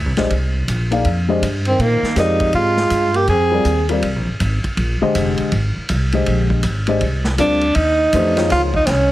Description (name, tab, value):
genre	modal jazz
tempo	161 BPM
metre	4/4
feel	swing 63% on 8ths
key	unclear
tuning	A4 = 440 Hz
part	upright bass	bass	0.0-9.1 s	F1 to Bb2	-19 LUFS	equal	none
part	dark concert grand piano	accompaniment	0.2-8.7 s	D3 to F5	-20 LUFS	left 3 dB	none
part	vintage drum kit	drums	0.2-9.0 s	hi-hat, kick drum, ride cymbal, snare drum	-25 LUFS	equal	none
part	breathy tenor saxophone	melody	1.7-3.9, 7.4-9.1 s	Bb3 to Ab4	-16 LUFS	right 1 dB	plate reverb
part	breathy trombone	second line	1.7-3.9 s	Eb3 to C4	-24 LUFS	right 5 dB	none
room	light reverb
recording	heavily compressed radio sound, multiband compression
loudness	-15 LUFS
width	side -15 dB against mid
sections	0.0-7.8 A section; 7.8-9.1 B section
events	none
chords	0.0 F9sus4; 1.8 Bb9sus4; 7.8 Eb9sus4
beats	| 0.31 0.68 1.05 1.43 | 1.80 2.17 2.54 2.92 | 3.29 3.66 4.04 4.41 | 4.78 5.15 5.53 5.90 | 6.27 6.64 7.01 7.39 | 7.76 8.13 8.50 8.88